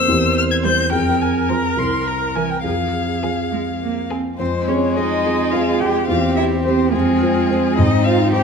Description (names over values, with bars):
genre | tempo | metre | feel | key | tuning
quick classical-period movement for piano quintet | 71 BPM (dotted quarters) | 6/8 | rubato | F minor | A4 = 440 Hz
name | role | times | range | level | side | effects
warm violin | melody | 0.0-8.4 s | Ab4 to Ab6 | -22 LUFS | left 7 dB | none
warm cello | second line | 0.0-8.4 s | E3 to G4 | -24 LUFS | right 8 dB | none
dark baby grand piano | accompaniment | 0.0-8.4 s | C2 to C5 | -19 LUFS | equal | none
warm viola | accompaniment | 0.0-8.4 s | Eb4 to C5 | -25 LUFS | right 4 dB | none
warm violin | second line | 0.7-8.4 s | Ab3 to C5 | -23 LUFS | left 3 dB | none
room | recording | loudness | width
wet scoring stage reverb, RT60 1.5 s | none | -16 LUFS | side -6 dB against mid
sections
0.0-4.4 A section; 4.4-8.4 B section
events
none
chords
0.1 C7/E; 0.9 Fm; 1.8 C7; 2.6 Fm; 6.1 C/E; 6.9 Fm; 7.8 Ab